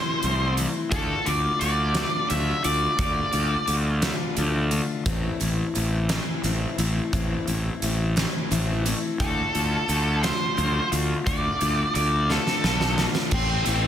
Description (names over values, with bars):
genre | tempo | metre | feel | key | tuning
quiet-loud alternative rock | 58 BPM (dotted quarters) | 6/8 | straight | unclear | A4 = 441 Hz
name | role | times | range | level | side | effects
octave-fuzz lead guitar | melody | 0.0-3.7, 9.2-13.9 s | C4 to E5 | -26 LUFS | equal | distortion
picked steel-string acoustic guitar | arpeggios | 0.0-13.9 s | A2 to F4 | -30 LUFS | left 6 dB | none
fuzz fingered electric bass | bass | 0.2-13.9 s | A1 to D2 | -25 LUFS | equal | overdrive
huge arena drum kit | drums | 0.2-13.8 s | crash cymbal, hi-hat, kick drum, snare drum | -28 LUFS | right 1 dB | none
room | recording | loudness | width
light reverb, small room ambience | dense, heavily limited modern master | -22 LUFS | side -10 dB against mid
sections
0.0-13.3 A section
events
drum fill 12.3-13.3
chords
0.0 Am; 0.9 Dm; 5.1 Am; 9.2 Dm; 13.3 Am